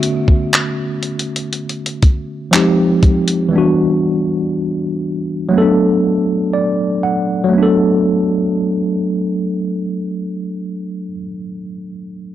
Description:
contemporary R&B; 60 BPM; 4/4; straight; B minor; A4 = 439 Hz
mellow tine electric piano; accompaniment; 0.0-12.3 s; D3 to F#5; -15 LUFS; equal; medium stereo tremolo
dusty soul sampler-style drum kit; drums; 0.0-3.5 s; handclaps, hi-hat, kick drum; -14 LUFS; equal
digital ambience; dry, gritty hardware recording; -14 LUFS; side -12 dB against mid
0.0-7.5 A section; 7.5-11.5 B section
tine electric piano fill 6.0-7.5
0.0 Bm9; 2.5 Fm9; 3.5 Em9; 5.5 Bm7

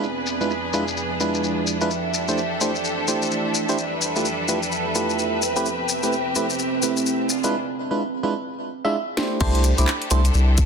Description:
UK garage, two-step garage; 128 BPM; 4/4; swing 61% on 16ths; C major; A4 = 439 Hz
rich symphonic violin section; sustained chords; 0.0-10.7 s; G3 to E5; -28 LUFS; equal; sidechain pumping
FM electric piano; stabs; 0.0-10.2 s; G#3 to E5; -25 LUFS; right 2 dB; chorus, digital delay
garage drum kit; drums; 0.0-10.7 s; crash cymbal, handclaps, hi-hat, shaker, snare drum; -26 LUFS; left 4 dB; low-pass filter on snare, studio reverb, low-pass filter on hats, low-pass filter on perc, low-pass filter on cymbals
deep dark ambient pad; texture; 0.0-7.5 s; F3 to A5; -27 LUFS; right 2 dB; chorus, built-in reverb, sidechain pumping
soft synth bell; melody; 9.4-10.4 s; A5 to D6; -29 LUFS; right 4 dB; chorus, phaser, digital delay
saturated sub bass; bass; 9.4-10.7 s; C2; -17 LUFS; left 1 dB
electronic kick drum; drums; 9.4-10.7 s; -21 LUFS; equal; studio reverb
moderate plate reverb, RT60 1.9 s; dense, heavily limited modern master; -20 LUFS; side -6 dB against mid
0.0-9.4 A section; 9.4-10.7 B section
break 7.5-9.4; drum fill 9.2; drop 9.4-10.7
0.0 E7b9; 1.9 C69; 3.8 G13; 5.4 Am9; 7.3 E7b9; 9.4 C69

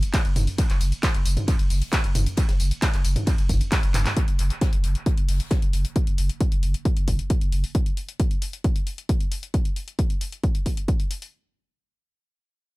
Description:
driving peak-time techno; 134 BPM; 4/4; straight; A4 = 440 Hz
saturated sub bass; bass; 0.0-7.6 s; F#1; -24 LUFS; equal; overdrive, sidechain pumping, low-pass filter
punchy analog drum machine; drums; 0.0-11.3 s; handclaps, hi-hat, ride cymbal, tambourine, toms; -30 LUFS; equal; dub echo
electronic kick drum; drums; 0.1-11.0 s; -22 LUFS; equal
tight funk drum kit; drums; 0.1-6.0 s; hi-hat, snare drum; -39 LUFS; left 2 dB
little or no reverb; echo-heavy mix; -21 LUFS; side -22 dB against mid
0.0-4.2 A section; 4.2-11.3 B section
drop 0.0-4.2; drum fill 3.9

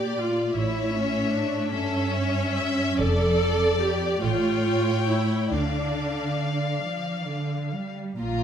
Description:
classical, slow romantic movement for string orchestra; 42-53 BPM (dotted quarters); 6/8; rubato; D minor; A4 = 440 Hz
rich chamber violin section; melody; 0.0-8.4 s; D5 to Bb5; -32 LUFS; left 7 dB
rich studio violin section; second line; 0.0-8.4 s; F4 to E5; -32 LUFS; left 2 dB
warm studio viola section; accompaniment; 0.0-8.4 s; Bb3 to A4; -26 LUFS; right 1 dB
rich studio cello section; bass; 0.0-8.4 s; F2 to G3; -28 LUFS; right 1 dB
rich studio double bass section; bass; 0.6-8.4 s; F1 to D2; -30 LUFS; right 2 dB
moderate scoring stage reverb, RT60 2.1 s; -22 LUFS; side -8 dB against mid
0.0-8.2 A section
0.0 Dm; 0.6 A; 3.0 Dm/F; 4.2 A7; 5.5 Dm

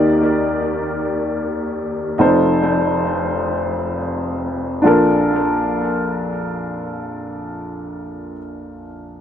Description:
gospel; 41-52 BPM (dotted quarters); 6/8; straight; Bb major; A4 = 440 Hz
warm upright piano; solo; 0.0-9.2 s; F1 to D5; -17 LUFS; equal; tape echo
light reverb; echo-heavy mix; -16 LUFS; side -9 dB against mid
0.0-4.9 A section; 4.9-7.8 B section
slowing down 0.0-4.9
0.0 Ebmaj7; 2.2 F7; 4.9 Bbmaj7

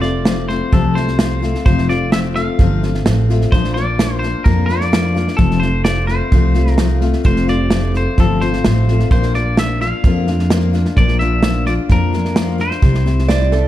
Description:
honky-tonk and classic country; 129 BPM; 4/4; straight; F major; A4 = 440 Hz
twangy electric guitar; melody; 0.0-13.7 s; A4 to F5; -23 LUFS; left 1 dB
picked steel-string acoustic guitar; accompaniment; 0.0-13.7 s; F2 to G4; -20 LUFS; left 6 dB
upright bass; bass; 0.0-13.6 s; F1 to F2; -17 LUFS; right 1 dB
natural country drum kit; drums; 0.0-13.6 s; hi-hat, kick drum, snare drum; -17 LUFS; right 1 dB
lap resonator guitar; second line; 13.3-13.7 s; A4 to D5; -18 LUFS; right 6 dB; tape echo
light reverb; dark, warm production; -13 LUFS; side -13 dB against mid
0.0-13.7 A section
0.0 F; 3.5 Bb; 5.4 F; 9.1 Bb; 12.8 C

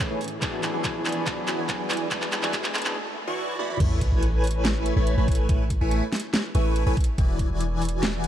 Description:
future bass; 142 BPM; 4/4; half-time; A major; A4 = 441 Hz
electric guitar at the edge of break-up; accompaniment; 0.0-3.0 s; E3 to G#4; -34 LUFS; left 2 dB; vintage 12-bit sampler grit, sidechain pumping, tape echo
shimmering ambient pad; sustained chords; 0.2-2.9 s; E2 to G#4; -43 LUFS; right 1 dB
big bright polysynth; riff; 0.0-8.3 s; E3 to C#6; -28 LUFS; equal; phaser, sidechain pumping, tape echo
dubstep drum kit; drums; 0.0-8.3 s; crash cymbal, handclaps, hi-hat, snare drum, toms; -29 LUFS; equal
electronic kick drum; drums; 0.0-7.5 s; -25 LUFS; equal
riser and sub drop; sound effects; 0.1-5.5 s; -33 LUFS; equal
warm 808-style bass; bass; 3.8-8.3 s; E1 to A1; -24 LUFS; equal; sidechain pumping
light reverb, digital ambience; dark, warm production, high-pass filter; -22 LUFS; side -11 dB against mid
0.0-3.8 A section; 3.8-8.3 B section
build-up 0.0-3.8; drum fill 0.0-3.0, 3.6; filter sweep on analog polysynth 0.0-3.8; riser 0.1-3.0; break 3.0-3.8; drop 3.8-8.3; impact 3.8-5.5
0.2 E7; 3.8 Amaj7; 7.0 E7

